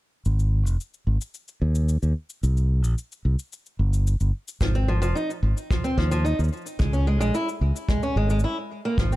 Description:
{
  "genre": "folktronica",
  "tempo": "110 BPM",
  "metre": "4/4",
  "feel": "straight",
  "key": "Ab major",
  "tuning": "A4 = 439 Hz",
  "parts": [
    { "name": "modern bright fingered electric bass", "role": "bass", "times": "0.3-9.2 s", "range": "F1 to Eb2", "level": "-21 LUFS", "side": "equal", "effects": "tube saturation" },
    { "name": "cabasa", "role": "drums", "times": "0.3-9.2 s", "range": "none", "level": "-43 LUFS", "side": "left 5 dB", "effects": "none" },
    { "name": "picked old ladder-braced acoustic guitar", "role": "arpeggios", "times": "4.6-9.2 s", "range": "F3 to Fb4", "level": "-26 LUFS", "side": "equal", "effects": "digital delay, plate reverb" },
    { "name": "kick drum", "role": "drums", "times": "4.6-9.1 s", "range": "none", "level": "-25 LUFS", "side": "equal", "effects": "none" }
  ],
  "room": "light reverb",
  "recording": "dark, warm production",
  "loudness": "-22 LUFS",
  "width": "side -17 dB against mid",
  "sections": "0.3-9.0 A section",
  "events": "filter sweep on fingered electric bass 0.3-9.0; break 8.4-9.0",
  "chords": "0.3 Ab5; 2.4 C5; 4.6 Ab5; 6.8 Db5",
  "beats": "| 0.26 0.80 1.35 1.89 | 2.44 2.98 3.53 4.08 | 4.62 5.17 5.71 6.26 | 6.80 7.35 7.89 8.44 | 8.98"
}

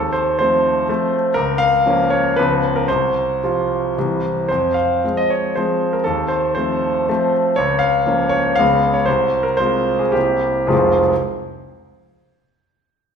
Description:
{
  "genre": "classical, romantic triple-time dance for piano with dotted rhythms",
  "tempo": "102-130 BPM",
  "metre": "3/4",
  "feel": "rubato",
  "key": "F minor",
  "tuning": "A4 = 443 Hz",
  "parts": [
    { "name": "clear concert grand piano", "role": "solo", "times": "0.0-11.1 s", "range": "F1 to F5", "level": "-15 LUFS", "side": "equal", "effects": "none" }
  ],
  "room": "wet recital hall reverb, RT60 1.4 s",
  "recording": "recorded in a church or concert hall",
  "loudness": "-15 LUFS",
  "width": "side -6 dB against mid",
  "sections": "0.0-10.7 A section; 10.7-12.4 B section",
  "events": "slowing down 6.8-10.7",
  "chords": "0.0 F7/Eb; 1.4 Bbm/Db; 2.4 Db7; 2.9 Csus4; 4.0 C; 4.5 Fm; 6.1 F7/Eb; 7.6 Bbm/Db; 8.6 Db7; 9.1 Fm/C; 10.2 C7; 10.7 Fm",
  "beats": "0.39 0.90 | 1.36 1.86 2.38 | 2.88 3.41 3.96 | 4.49 5.03 5.56 | 6.06 6.58 7.09 | 7.58 8.06 8.58 | 9.08 9.60 10.15 | 10.72"
}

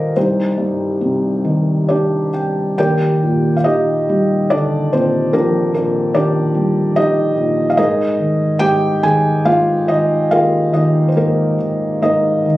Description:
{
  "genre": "classical, lyrical solo piano",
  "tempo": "66-75 BPM",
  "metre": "3/4",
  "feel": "rubato",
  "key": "Eb major",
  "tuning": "A4 = 439 Hz",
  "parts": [
    { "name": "felt-muted upright piano", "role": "solo", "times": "0.0-12.6 s", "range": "Bb1 to Ab5", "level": "-13 LUFS", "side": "equal", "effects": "none" }
  ],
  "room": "light reverb",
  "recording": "recorded on a phone in the room, club reverb, compression",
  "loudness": "-13 LUFS",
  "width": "side -16 dB against mid",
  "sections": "0.0-2.8 A section; 2.8-12.6 B section",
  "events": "felt piano fill 1.4-2.8",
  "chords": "0.2 Cmadd9; 2.8 Ebmaj7; 7.8 Absus2",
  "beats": "| 0.17 1.01 1.89 | 2.78 3.65 4.51 | 5.34 6.14 6.96 | 7.78 8.61 9.45 | 10.30 11.16 12.03"
}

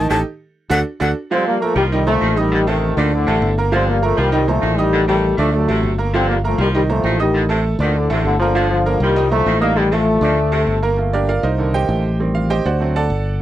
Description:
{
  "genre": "latin",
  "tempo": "199 BPM",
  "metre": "4/4",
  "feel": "straight",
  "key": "G minor",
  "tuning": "A4 = 440 Hz",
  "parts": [
    { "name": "breathy bright jazz flute", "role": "melody", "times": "0.0-1.1 s", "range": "F#5 to A5", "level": "-20 LUFS", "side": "left 2 dB", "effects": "none" },
    { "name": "bright concert grand piano", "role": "accompaniment", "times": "0.0-13.4 s", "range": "Bb2 to Eb6", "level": "-21 LUFS", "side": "right 4 dB", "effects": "none" },
    { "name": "fingered electric bass", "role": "bass", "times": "0.0-13.4 s", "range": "G1 to D2", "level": "-19 LUFS", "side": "equal", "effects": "none" },
    { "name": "edgy saxophone section", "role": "second line", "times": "0.1-10.8 s", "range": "A2 to F#3", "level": "-24 LUFS", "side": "equal", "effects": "none" },
    { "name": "mellow trombone section", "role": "melody", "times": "1.3-10.8 s", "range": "A2 to C4", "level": "-18 LUFS", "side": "left 2 dB", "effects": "tape echo" }
  ],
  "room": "light reverb",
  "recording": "dry, close 1970s-style studio recording",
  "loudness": "-14 LUFS",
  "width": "side -13 dB against mid",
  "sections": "0.0-1.3 A section; 1.3-11.0 B section; 11.0-13.4 C section",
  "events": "band accent 0.1-1.3; grand piano solo 11.0-13.4",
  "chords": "0.1 A7(b5, no3); 0.7 D; 1.3 Gm7; 1.9 Cm7; 2.5 Adim; 3.1 D5; 3.7 Gm7; 4.3 Cm7; 4.9 Am7b5; 5.5 D7; 6.1 Gm7; 6.7 Cm7; 7.3 Adim; 7.9 D5; 8.6 Gm7; 9.2 Cm7; 9.8 Adim; 10.4 D5; 11.0 Gm7; 11.6 Cm7; 12.2 Am7b5; 12.8 D7",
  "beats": "| 0.11 0.41 0.71 1.01 | 1.32 1.62 1.92 2.22 | 2.52 2.82 3.12 3.42 | 3.73 4.03 4.33 4.63 | 4.93 5.23 5.53 5.83 | 6.14 6.44 6.74 7.04 | 7.34 7.65 7.95 8.25 | 8.55 8.86 9.16 9.46 | 9.77 10.07 10.37 10.68 | 10.98 11.28 11.59 11.89 | 12.19 12.50 12.80 13.11 | 13.41"
}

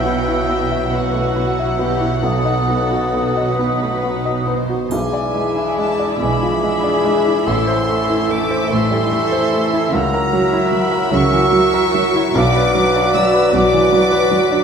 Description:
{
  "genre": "classical, romantic movement for piano and orchestra",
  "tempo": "44-51 BPM (dotted quarters)",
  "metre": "12/8",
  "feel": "rubato",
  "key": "unclear",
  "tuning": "A4 = 440 Hz",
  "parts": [
    { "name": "clear baby grand piano", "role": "melody", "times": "0.0-14.6 s", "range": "A1 to E5", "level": "-19 LUFS", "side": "equal", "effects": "none" },
    { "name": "warm chamber violin section", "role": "melody", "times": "0.0-14.6 s", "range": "F#5 to E6", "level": "-25 LUFS", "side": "left 1 dB", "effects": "none" },
    { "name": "mellow clarinet", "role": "second line", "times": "0.0-14.6 s", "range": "G#4 to B4", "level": "-25 LUFS", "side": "left 2 dB", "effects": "none" },
    { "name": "mellow hollow concert flute", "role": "second line", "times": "0.0-14.6 s", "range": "D6 to E6", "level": "-24 LUFS", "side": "left 1 dB", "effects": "none" },
    { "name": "warm chamber violin section", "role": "second line", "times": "0.0-14.6 s", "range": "F#4 to F#5", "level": "-25 LUFS", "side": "left 1 dB", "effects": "none" },
    { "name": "warm bassoon", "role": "accompaniment", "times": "0.0-14.6 s", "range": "E3 to F#3", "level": "-25 LUFS", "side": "right 2 dB", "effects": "none" },
    { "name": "warm chamber viola section", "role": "accompaniment", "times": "0.0-14.6 s", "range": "F#3 to F#4", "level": "-25 LUFS", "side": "right 4 dB", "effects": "none" },
    { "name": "warm French horn section", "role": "sustained chords", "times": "0.0-14.6 s", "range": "F#3 to E4", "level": "-24 LUFS", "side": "left 3 dB", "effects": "none" },
    { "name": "rich chamber cello section", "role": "bass", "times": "0.0-14.6 s", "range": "A2 to C#3", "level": "-24 LUFS", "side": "right 2 dB", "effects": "none" },
    { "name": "rich chamber double bass section", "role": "bass", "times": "0.0-14.6 s", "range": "A1 to C#2", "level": "-26 LUFS", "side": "right 4 dB", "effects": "none" },
    { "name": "triangle", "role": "percussion", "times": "4.9-6.6 s", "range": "none", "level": "-38 LUFS", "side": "left 1 dB", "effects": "none" }
  ],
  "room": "wet scoring stage reverb, RT60 1.5 s",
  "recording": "minimal, uncompressed stereo recording",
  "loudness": "-14 LUFS",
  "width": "side -7 dB against mid",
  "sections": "0.0-14.6 A section",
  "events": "none",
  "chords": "0.0 Bsus4; 2.2 B; 4.9 E7/B; 7.5 Am; 9.9 F#7/C#; 12.4 Bm",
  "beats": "0.92 2.24 3.59 | 4.91 6.21 7.46 8.71 | 9.92 11.12 12.35 13.54"
}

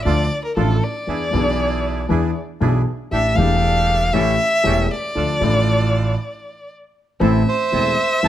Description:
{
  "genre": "tango",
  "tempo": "117 BPM",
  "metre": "4/4",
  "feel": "rubato",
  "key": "D harmonic minor",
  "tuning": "A4 = 440 Hz",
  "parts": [
    { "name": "warm violin", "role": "second line", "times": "0.0-8.3 s", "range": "A4 to F5", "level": "-21 LUFS", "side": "left 1 dB", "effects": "none" },
    { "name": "dark upright piano", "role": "accompaniment", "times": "0.1-8.3 s", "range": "E1 to A4", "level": "-20 LUFS", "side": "left 3 dB", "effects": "none" },
    { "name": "bandoneon", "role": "stabs", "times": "0.1-8.3 s", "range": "C4 to A4", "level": "-29 LUFS", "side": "right 6 dB", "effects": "none" },
    { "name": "upright bass", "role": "bass", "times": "0.1-8.3 s", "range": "E1 to E2", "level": "-21 LUFS", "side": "right 2 dB", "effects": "none" },
    { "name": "bandoneon", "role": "melody", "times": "7.5-8.3 s", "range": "C5", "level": "-19 LUFS", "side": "right 5 dB", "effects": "none" }
  ],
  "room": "light reverb",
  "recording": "close, detailed microphones",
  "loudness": "-16 LUFS",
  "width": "side -12 dB against mid",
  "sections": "0.0-7.2 A section; 7.2-8.3 B section",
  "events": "violin solo 0.0-7.2; stop 6.2-7.2",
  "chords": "0.0 Dm; 1.1 E7; 3.1 A7sus4; 4.1 A7; 5.2 Dm; 7.2 Am",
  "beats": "0.05 0.56 | 1.07 1.58 2.10 2.61 | 3.12 3.63 4.14 4.65 | 5.16 5.67 6.18 6.70 | 7.21 7.72 8.24"
}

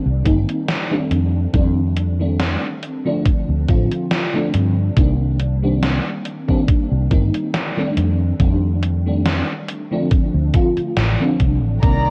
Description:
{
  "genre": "vaporwave",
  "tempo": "70 BPM",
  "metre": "4/4",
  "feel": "swing 54% on 16ths",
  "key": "unclear",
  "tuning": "A4 = 440 Hz",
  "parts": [
    { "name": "FM electric piano with soft pad layer", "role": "accompaniment", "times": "0.0-12.1 s", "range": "D3 to F4", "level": "-23 LUFS", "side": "equal", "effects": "ensemble chorus, analog delay" },
    { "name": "fretless electric bass", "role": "bass", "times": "0.1-12.1 s", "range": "G1 to G2", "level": "-20 LUFS", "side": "equal", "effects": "none" },
    { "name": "electronic kick drum", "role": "drums", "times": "0.3-12.0 s", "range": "none", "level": "-19 LUFS", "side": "equal", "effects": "none" },
    { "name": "gated 80s digital drum machine", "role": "drums", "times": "0.3-12.0 s", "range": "hi-hat, snare drum", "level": "-25 LUFS", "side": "equal", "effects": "gated reverb, gated reverb snare, overdrive" },
    { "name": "warm studio string section", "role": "sustained chords", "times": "11.8-12.1 s", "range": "Eb3 to Bb5", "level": "-22 LUFS", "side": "equal", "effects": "none" }
  ],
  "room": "light reverb",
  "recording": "worn, warbling old tape, cassette tape, warbly pitch drift",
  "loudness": "-18 LUFS",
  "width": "mono",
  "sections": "0.0-12.1 A section",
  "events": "none",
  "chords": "0.0 Cm9; 1.1 F13; 3.3 Dm7; 5.0 Cm9; 8.0 F13; 10.1 Dm7",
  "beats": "0.68 | 1.54 2.40 3.25 4.11 | 4.97 5.83 6.68 7.54 | 8.40 9.25 10.11 10.97 | 11.82"
}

